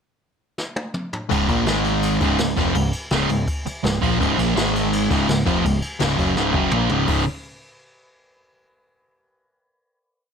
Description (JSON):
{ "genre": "punk rock", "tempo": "166 BPM", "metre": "4/4", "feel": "straight", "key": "Db major", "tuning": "A4 = 440 Hz", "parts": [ { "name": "jazz brush drum kit", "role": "drums", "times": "0.6-7.2 s", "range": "crash cymbal, hi-hat, kick drum, snare drum, toms", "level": "-25 LUFS", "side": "equal", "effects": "none" }, { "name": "sludgy distorted guitar", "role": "riff", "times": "1.3-7.2 s", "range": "Db2 to Bb3", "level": "-23 LUFS", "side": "left 14 dB", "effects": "overdrive" }, { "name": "sludgy distorted guitar", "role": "riff", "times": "1.3-7.2 s", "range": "Db2 to Bb3", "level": "-21 LUFS", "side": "right 9 dB", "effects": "overdrive" }, { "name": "growling picked electric bass", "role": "bass", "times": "1.3-7.3 s", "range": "Db1 to Bb1", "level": "-26 LUFS", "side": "equal", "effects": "overdrive" } ], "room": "moderate studio reverb, RT60 0.8 s", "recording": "none", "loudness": "-18 LUFS", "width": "side -6 dB against mid", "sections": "0.0-1.3 pickup bar; 1.3-7.1 riff; 7.1-8.5 final chord", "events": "drum fill 0.6-1.3, 6.4-7.1", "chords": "0.0 N.C.; 1.3 Db; 1.7 Ab5; 2.2 Db; 4.6 Ab5; 5.1 Db; 7.1 Db5" }